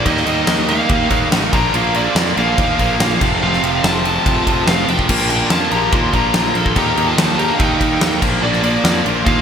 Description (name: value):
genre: hard rock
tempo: 143 BPM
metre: 4/4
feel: straight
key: unclear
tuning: A4 = 440 Hz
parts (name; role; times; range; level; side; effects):
- smooth overdriven lead guitar; melody; 0.0-9.4 s; D5 to C6; -20 LUFS; left 1 dB; none
- smooth overdriven lead guitar; second line; 0.0-9.4 s; Bb3 to A4; -24 LUFS; right 2 dB; none
- tonewheel organ; sustained chords; 0.0-9.4 s; F3 to F5; -31 LUFS; equal; none
- distorted electric guitar; riff; 0.0-9.4 s; F2 to Eb4; -22 LUFS; right 10 dB; overdrive
- high-gain distorted guitar; riff; 0.0-9.4 s; F2 to Eb4; -23 LUFS; left 1 dB; distortion
- tight distorted guitar; riff; 0.0-9.4 s; F2 to Eb4; -24 LUFS; left 11 dB; distortion
- modern bright picked electric bass; bass; 0.1-9.4 s; F1 to F2; -22 LUFS; equal; none
- huge arena drum kit; drums; 0.1-9.4 s; crash cymbal, kick drum, ride cymbal, snare drum; -18 LUFS; equal; gated reverb
room: moderate lush hall reverb, RT60 1.7 s, studio ambience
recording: bright 1980s-style digital production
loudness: -13 LUFS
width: side -7 dB against mid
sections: 0.0-9.4 A section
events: none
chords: 0.1 Eb; 1.5 Bb; 3.2 F; 5.1 Bb; 6.8 Eb; 8.2 Bb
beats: | 0.06 0.48 0.90 1.32 | 1.74 2.16 2.58 3.00 | 3.42 3.83 4.25 4.67 | 5.09 5.51 5.93 6.35 | 6.76 7.18 7.60 8.02 | 8.43 8.85 9.26